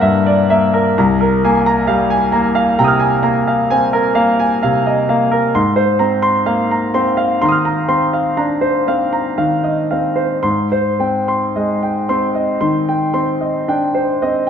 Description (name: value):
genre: classical, impressionist solo piano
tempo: 54-68 BPM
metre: 5/4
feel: rubato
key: unclear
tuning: A4 = 438 Hz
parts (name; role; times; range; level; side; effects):
- clear concert grand piano; solo; 0.0-14.5 s; C2 to F6; -13 LUFS; equal; none
room: moderate scoring stage reverb, RT60 1.6 s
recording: nothing above 7.5 kHz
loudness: -13 LUFS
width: side -8 dB against mid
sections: 0.0-14.5 A section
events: none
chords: 0.0 C7#11; 1.0 Fm11/C; 5.6 Ab69; 10.4 Abmaj7